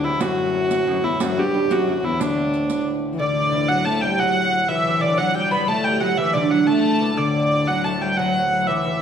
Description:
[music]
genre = medieval dance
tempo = 120 BPM (dotted quarters)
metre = 6/8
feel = straight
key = D major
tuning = A4 = 440 Hz
[part]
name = dark hurdy-gurdy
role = melody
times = 0.0-9.0 s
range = D4 to B5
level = -20 LUFS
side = equal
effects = none
[part]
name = lute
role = second line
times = 0.0-9.0 s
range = D2 to B3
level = -25 LUFS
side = right 5 dB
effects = none
[part]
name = warm viola da gamba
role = second line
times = 0.0-9.0 s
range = D2 to A3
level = -24 LUFS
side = left 4 dB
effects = none
[part]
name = hand-pumped harmonium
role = drone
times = 0.0-9.0 s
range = D2 to A2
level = -30 LUFS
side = left 1 dB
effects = none
[part]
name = riq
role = percussion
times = 0.2-2.9 s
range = none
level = -30 LUFS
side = right 4 dB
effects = none
[sound]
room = wet recital hall reverb, RT60 1.6 s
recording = none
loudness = -18 LUFS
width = side -8 dB against mid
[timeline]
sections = 0.0-3.2 A section; 3.2-9.0 B section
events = none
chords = none

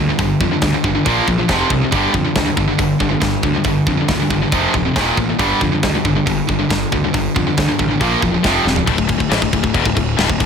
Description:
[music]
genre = heavy metal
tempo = 138 BPM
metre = 4/4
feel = straight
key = unclear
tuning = A4 = 440 Hz
[part]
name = high-gain distorted guitar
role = riff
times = 0.0-8.9 s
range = Eb2 to Bb3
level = -19 LUFS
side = right 12 dB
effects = distortion
[part]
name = tight distorted guitar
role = riff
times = 0.0-10.5 s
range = D2 to Bb3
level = -19 LUFS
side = left 10 dB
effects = distortion
[part]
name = fuzz picked electric bass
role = bass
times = 0.0-10.5 s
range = D1 to F2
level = -21 LUFS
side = equal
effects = overdrive
[part]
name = tight metal drum kit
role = drums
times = 0.2-10.5 s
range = crash cymbal, hi-hat, kick drum, snare drum, toms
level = -20 LUFS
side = equal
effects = none
[sound]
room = small room ambience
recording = none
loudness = -14 LUFS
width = side -6 dB against mid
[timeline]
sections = 0.0-8.9 A section; 8.9-10.5 B section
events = drum fill 8.7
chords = 0.0 G5; 1.1 Bb5; 1.5 F5; 1.9 G5; 4.5 F5; 5.0 Eb5; 5.4 G5; 8.0 Bb5; 8.4 F5; 8.9 D5

